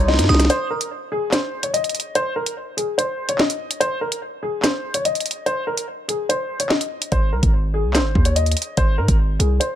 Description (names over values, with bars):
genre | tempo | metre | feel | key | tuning
hip hop, drill | 145 BPM | 4/4 | half-time | unclear | A4 = 439 Hz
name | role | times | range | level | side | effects
dark upright piano | melody | 0.0-9.8 s | Ab4 to Eb5 | -23 LUFS | left 2 dB | low-pass filter, tape echo
glassy synth bell | second line | 0.0-0.5 s | C6 to Eb6 | -27 LUFS | right 6 dB | chorus, phaser, tape echo
musette accordion | sustained chords | 0.0-0.5 s | C3 to Eb4 | -31 LUFS | equal | stereo widening
hard-hitting 808-style bass | bass | 0.0-0.5, 7.1-9.6 s | Ab1 to Ab2 | -19 LUFS | equal | none
drill drum kit | drums | 0.1-9.7 s | handclaps, hi-hat, kick drum, snare drum | -20 LUFS | equal | none
room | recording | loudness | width
little or no reverb | dense, heavily limited modern master | -18 LUFS | side -11 dB against mid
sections
0.5-9.8 A section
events
drum fill 0.1-0.5; break 0.5-7.1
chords
0.5 N.C.; 7.1 Ab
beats
0.08 | 0.50 0.91 1.32 1.74 | 2.15 2.57 2.98 3.39 | 3.81 4.22 4.64 5.05 | 5.46 5.88 6.29 6.71 | 7.12 7.53 7.95 8.36 | 8.77 9.19 9.60